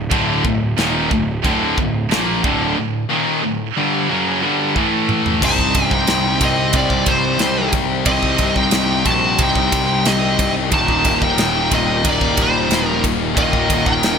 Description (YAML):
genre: heavy metal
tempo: 91 BPM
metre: 4/4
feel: straight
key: unclear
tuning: A4 = 440 Hz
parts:
  - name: crunchy overdriven guitar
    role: riff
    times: 0.0-14.2 s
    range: D2 to C5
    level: -23 LUFS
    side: right 2 dB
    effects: none
  - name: heavy high-gain guitar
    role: riff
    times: 0.0-5.4 s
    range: D2 to Bb3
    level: -22 LUFS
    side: right 14 dB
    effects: distortion
  - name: tight distorted guitar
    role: riff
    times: 0.0-14.2 s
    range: D2 to C4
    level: -20 LUFS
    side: left 10 dB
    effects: distortion
  - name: fuzz picked electric bass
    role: bass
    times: 0.0-14.2 s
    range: D1 to C2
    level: -24 LUFS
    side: right 1 dB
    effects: overdrive
  - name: modern studio drum kit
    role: drums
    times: 0.1-14.2 s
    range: china cymbal, crash cymbal, kick drum, ride cymbal, snare drum, toms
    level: -20 LUFS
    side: right 1 dB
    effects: none
  - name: high-gain lead guitar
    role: second line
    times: 5.4-14.2 s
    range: G3 to F#4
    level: -26 LUFS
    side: right 4 dB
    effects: distortion, digital delay
  - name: high-gain lead guitar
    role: melody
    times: 5.5-14.2 s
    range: C5 to A5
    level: -19 LUFS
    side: right 2 dB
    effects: distortion
room: light reverb, small room ambience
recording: bright 1980s-style digital production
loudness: -14 LUFS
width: side -6 dB against mid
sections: 0.0-5.4 A section; 5.4-14.2 B section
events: drum fill 4.8-5.4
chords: 0.0 D; 4.8 A5; 5.4 Cm; 10.7 Eb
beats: | 0.11 0.78 1.44 2.11 | 2.77 3.43 4.10 4.76 | 5.42 6.08 6.75 7.41 | 8.07 8.73 9.39 10.05 | 10.72 11.38 12.04 12.70 | 13.36 14.03